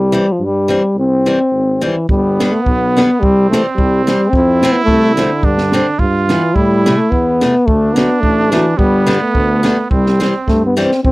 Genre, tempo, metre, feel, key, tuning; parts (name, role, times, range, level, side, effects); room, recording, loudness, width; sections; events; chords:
alpine folk, alpine dance band; 107 BPM; 2/4; swing 54% on 8ths, rubato; C major; A4 = 440 Hz
warm euphonium; melody; 0.0-11.1 s; D3 to C4; -14 LUFS; left 1 dB
warm tuba; bass; 0.0-11.1 s; G1 to A2; -19 LUFS; equal; transformer saturation
picked old ladder-braced acoustic guitar; accompaniment; 0.1-10.9 s; C3 to C4; -18 LUFS; left 2 dB
mellow trumpet; second line; 2.1-11.1 s; B3 to F4; -18 LUFS; right 4 dB
compact cocktail drum kit; drums; 2.1-11.1 s; kick drum, snare drum; -17 LUFS; right 1 dB
light reverb; dry, close 1970s-style studio recording; -11 LUFS; side -20 dB against mid
0.0-2.1 A section; 2.1-11.1 B section
drum fill 10.5-11.1
0.0 C; 2.1 G; 3.2 C; 4.3 F; 5.4 Gsus4; 6.0 G; 6.6 Am; 7.7 D; 8.8 G; 9.9 C